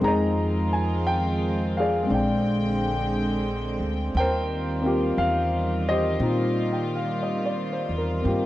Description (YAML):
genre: jazz ballad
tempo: 59 BPM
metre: 4/4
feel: swing 66% on 8ths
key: Eb major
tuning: A4 = 440 Hz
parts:
  - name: warm grand piano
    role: accompaniment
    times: 0.0-8.5 s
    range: Ab3 to Bb5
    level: -25 LUFS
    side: left 1 dB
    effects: none
  - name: warm studio string section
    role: sustained chords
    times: 0.0-8.5 s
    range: D3 to G5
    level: -28 LUFS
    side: right 1 dB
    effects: none
  - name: upright bass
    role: bass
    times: 0.0-8.5 s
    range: Bb1 to Bb2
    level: -28 LUFS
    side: equal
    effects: none
room: light reverb, studio reverb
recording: dry, close 1970s-style studio recording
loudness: -22 LUFS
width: side -15 dB against mid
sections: 0.0-8.5 A section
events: none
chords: 0.0 Fm7; 2.1 Bb13; 4.2 Eb69